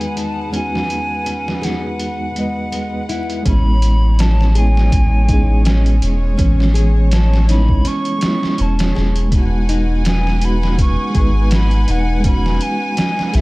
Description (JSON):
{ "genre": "trip hop", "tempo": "82 BPM", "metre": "4/4", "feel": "swing 56% on 16ths", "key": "unclear", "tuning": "A4 = 438 Hz", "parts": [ { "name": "hollow concert flute", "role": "melody", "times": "0.0-13.4 s", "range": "E5 to C#6", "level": "-25 LUFS", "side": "equal", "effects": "tape echo" }, { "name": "reed electric piano", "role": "accompaniment", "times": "0.0-13.4 s", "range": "E2 to D#5", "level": "-22 LUFS", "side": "right 1 dB", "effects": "fast tremolo, vintage 12-bit sampler grit, tape echo" }, { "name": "rich studio violin section", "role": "sustained chords", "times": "0.0-13.4 s", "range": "G#3 to G#5", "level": "-30 LUFS", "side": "left 1 dB", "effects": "vintage 12-bit sampler grit" }, { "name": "trip hop sampler-style drum kit", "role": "drums", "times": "0.0-13.4 s", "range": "hi-hat, kick drum, snare drum", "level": "-19 LUFS", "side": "equal", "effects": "overdrive, low-pass filter on hats, low-pass filter on snare, low-pass filter on kick, low-pass filter on room" }, { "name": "backwards swelling texture", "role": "texture", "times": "0.0-3.5 s", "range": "G#3", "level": "-35 LUFS", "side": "left 3 dB", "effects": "none" }, { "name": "nylon-string guitar", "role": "arpeggios", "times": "0.2-13.4 s", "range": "G#3 to G#4", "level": "-28 LUFS", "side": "left 1 dB", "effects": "tape echo" }, { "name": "soft dub sub bass", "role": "bass", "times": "3.5-13.4 s", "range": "E1 to B1", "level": "-14 LUFS", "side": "equal", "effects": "none" } ], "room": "digital ambience", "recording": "vinyl crackle", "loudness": "-13 LUFS", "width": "side -22 dB against mid", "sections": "0.0-3.5 A section; 3.5-13.4 B section", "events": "none", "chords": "0.0 Emaj9; 3.5 Amaj7; 9.3 Emaj9", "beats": "| 0.53 1.27 2.00 2.73 | 3.46 4.19 4.92 5.66 | 6.39 7.12 7.85 8.58 | 9.31 10.05 10.78 11.51 | 12.24 12.97" }